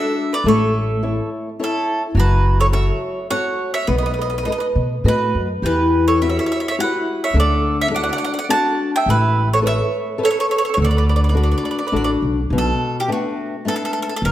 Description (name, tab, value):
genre	italian folk, Italian serenade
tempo	105 BPM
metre	3/4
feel	straight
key	D major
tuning	A4 = 439 Hz
part	bowl-back mandolin	melody	0.0-14.3 s	F#4 to A5	-22 LUFS	right 1 dB	none
part	mandolin	second line	0.0-12.1 s	E4 to F#5	-25 LUFS	right 4 dB	none
part	flamenco guitar	accompaniment	0.0-14.3 s	B2 to D#5	-21 LUFS	left 2 dB	none
part	upright bass	bass	0.4-14.3 s	F#1 to B2	-18 LUFS	equal	none
room	moderate recital hall reverb, RT60 1.8 s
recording	none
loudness	-16 LUFS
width	side -13 dB against mid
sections	0.0-12.5 A section; 12.5-14.3 B section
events	none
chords	0.5 A; 2.2 F#m; 3.9 B7; 5.6 Emadd9; 7.3 D; 9.1 Aadd9; 10.8 D; 12.5 Bm7